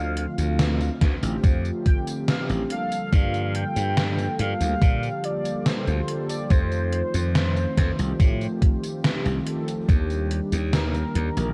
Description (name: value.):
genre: vaporwave.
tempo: 71 BPM.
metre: 4/4.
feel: straight.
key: unclear.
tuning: A4 = 442 Hz.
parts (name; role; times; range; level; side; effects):
warm velvety synth lead; melody; 0.0-11.5 s; Bb4 to G5; -34 LUFS; equal; chorus, tape echo.
mellow synth brass; accompaniment; 0.0-11.5 s; D3 to Bb4; -31 LUFS; equal; subtle chorus.
glassy slap bass; bass; 0.0-11.5 s; A1 to Bb2; -27 LUFS; equal; none.
gated 80s digital drum machine; drums; 0.2-11.5 s; hi-hat, snare drum, tambourine; -29 LUFS; equal; gated reverb, gated reverb snare, overdrive.
electronic kick drum; drums; 1.0-10.1 s; none; -21 LUFS; equal; overdrive.
room: little or no reverb.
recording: cassette tape.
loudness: -24 LUFS.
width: mono.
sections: 0.0-11.5 A section.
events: none.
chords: 0.0 Dm7; 2.7 Gm7; 6.5 F7; 9.9 Ebmaj7.